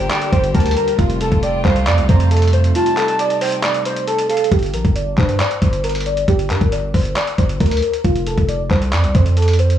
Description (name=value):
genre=hip hop, trap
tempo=136 BPM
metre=4/4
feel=half-time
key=G minor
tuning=A4 = 438 Hz
part: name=warbly lo-fi synth keys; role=melody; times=0.0-9.8 s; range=F4 to D5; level=-20 LUFS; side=right 1 dB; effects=chorus, low-pass filter, dub echo
part: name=jazz flute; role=second line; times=0.0-4.5 s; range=F5 to Bb5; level=-25 LUFS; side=right 2 dB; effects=dub echo
part: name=warm chamber string section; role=sustained chords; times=0.0-4.5 s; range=C3 to G4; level=-25 LUFS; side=left 2 dB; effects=none
part: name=long sustained 808-style bass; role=bass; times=0.0-9.8 s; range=F1 to G2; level=-17 LUFS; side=equal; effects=none
part: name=lo-fi sampler-style drum kit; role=drums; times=0.1-9.8 s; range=handclaps, hi-hat, kick drum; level=-19 LUFS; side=equal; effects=dub echo
room=little or no reverb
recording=echo-heavy mix, small room ambience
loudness=-14 LUFS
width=side -10 dB against mid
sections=0.0-4.5 A section; 4.5-9.8 B section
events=break 2.8-4.5; filter sweep on synth keys 4.5-9.8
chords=0.0 Gm; 1.0 Fadd9; 4.5 Gm; 8.0 F5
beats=0.10 0.55 | 0.99 1.43 1.87 2.31 | 2.75 3.19 3.63 4.08 | 4.52 4.96 5.40 5.84 | 6.28 6.72 7.16 7.60 | 8.04 8.49 8.93 9.37